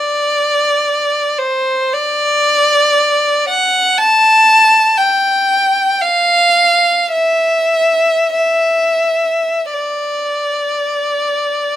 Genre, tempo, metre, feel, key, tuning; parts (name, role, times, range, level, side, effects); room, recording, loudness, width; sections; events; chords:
classical, free, expressive piece for unaccompanied violin; free time; D minor; A4 = 440 Hz
clear violin; solo; 0.0-11.8 s; C5 to A5; -11 LUFS; equal
light reverb; -11 LUFS; side -12 dB against mid
0.0-11.8 A section